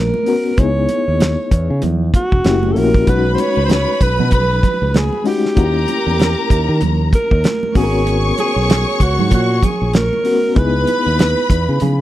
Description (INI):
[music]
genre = lush 1970s-style soul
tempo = 96 BPM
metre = 4/4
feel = swing 58% on 16ths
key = unclear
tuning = A4 = 440 Hz
[part]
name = warm alto saxophone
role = melody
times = 0.0-11.8 s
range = F#4 to C#5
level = -19 LUFS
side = right 1 dB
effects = none
[part]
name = reed electric piano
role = accompaniment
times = 0.0-12.0 s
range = G#3 to A#4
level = -21 LUFS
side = left 5 dB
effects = fast tremolo
[part]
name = fingered electric bass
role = bass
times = 0.0-12.0 s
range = E1 to D#3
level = -17 LUFS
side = equal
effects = none
[part]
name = congas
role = percussion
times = 0.1-12.0 s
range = none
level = -24 LUFS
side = right 6 dB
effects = none
[part]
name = cloth-damped thuddy drum kit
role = drums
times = 0.3-12.0 s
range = hi-hat, kick drum, snare drum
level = -15 LUFS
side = equal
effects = none
[part]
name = warm studio string section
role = second line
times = 3.1-12.0 s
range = A#4 to C#6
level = -22 LUFS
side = equal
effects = none
[sound]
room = small room reverb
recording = dry, close 1970s-style studio recording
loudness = -13 LUFS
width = side -14 dB against mid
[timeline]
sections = 0.0-12.0 A section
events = none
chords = 0.0 G#m11 (rootless); 0.6 C#m7; 2.5 F#7b9; 3.1 B69; 5.6 D#7b9; 7.8 G#m11; 10.6 C#m7